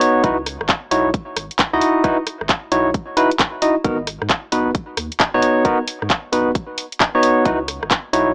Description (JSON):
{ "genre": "UK garage, two-step garage", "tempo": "133 BPM", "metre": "4/4", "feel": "swing 64% on 16ths", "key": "C# dorian", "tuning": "A4 = 438 Hz", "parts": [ { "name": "barky tine electric piano", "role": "stabs", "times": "0.0-8.3 s", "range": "B3 to D#5", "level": "-16 LUFS", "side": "equal", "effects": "tape echo" }, { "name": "garage drum kit", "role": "drums", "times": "0.0-8.2 s", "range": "handclaps, hi-hat, rim click", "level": "-18 LUFS", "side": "equal", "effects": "small room reverb" }, { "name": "saturated sub bass", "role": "bass", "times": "0.2-8.3 s", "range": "F#1 to G#2", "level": "-32 LUFS", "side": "equal", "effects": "none" }, { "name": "electronic kick drum", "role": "drums", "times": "0.2-8.0 s", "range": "none", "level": "-22 LUFS", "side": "equal", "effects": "small room reverb" } ], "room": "light reverb", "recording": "dry, gritty hardware recording, transformer saturation, small speaker sound", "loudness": "-16 LUFS", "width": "side -40 dB against mid", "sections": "0.0-8.3 A section", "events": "none", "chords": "0.2 C#m11; 3.8 G#m7; 7.5 C#m11", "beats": "| 0.24 0.69 1.14 1.59 | 2.04 2.49 2.94 3.40 | 3.85 4.30 4.75 5.20 | 5.65 6.10 6.55 7.00 | 7.46 7.91" }